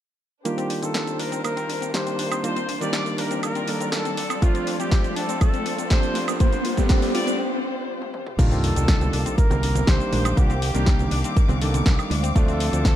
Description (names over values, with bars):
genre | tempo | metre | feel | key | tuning
nu-disco, nu disco | 121 BPM | 4/4 | straight | C dorian | A4 = 440 Hz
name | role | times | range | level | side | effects
warm electric grand piano | accompaniment | 0.4-13.0 s | Eb3 to A4 | -28 LUFS | right 1 dB | sidechain pumping, low-pass filter, ping-pong delay
mellow trumpet section | melody | 0.5-13.0 s | F4 to D5 | -30 LUFS | equal | low-pass filter, dub echo
dark studio violin section | sustained chords | 0.5-13.0 s | G3 to D6 | -33 LUFS | left 3 dB | sidechain pumping
analog pluck | arpeggios | 0.5-12.9 s | A3 to F4 | -33 LUFS | left 2 dB | chorus, sidechain pumping, dub echo
house drum kit | drums | 0.5-13.0 s | crash cymbal, hi-hat, shaker, snare drum, toms, woodblock | -29 LUFS | equal | high-pass filter on hats, small room ambience, high-pass filter on perc, high-pass filter on snare, high-pass filter on toms, high-pass filter on cymbals
riser and sub drop | sound effects | 2.7-10.4 s | none | -30 LUFS | equal | none
electronic kick drum | drums | 4.4-13.0 s | none | -19 LUFS | equal | small room ambience
fingered electric bass with an envelope filter | bass | 8.4-13.0 s | Bb1 to D2 | -24 LUFS | equal | sidechain pumping
congas | percussion | 9.0-12.2 s | none | -31 LUFS | right 4 dB | none
room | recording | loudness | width
light reverb | none | -20 LUFS | side -12 dB against mid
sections
0.5-8.4 A section; 8.4-13.0 B section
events
build-up 0.5-8.4; filter sweep on electric grand piano 0.5-8.4; filter sweep on trumpet section 0.5-8.4; riser 2.7-7.4; break 7.4-8.4; drum fill 8.0-8.4; drop 8.4-13.0; impact 8.4-10.4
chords
0.5 Cm11; 4.2 Dm7; 6.4 G7sus4; 8.4 Cm11; 12.1 Dm7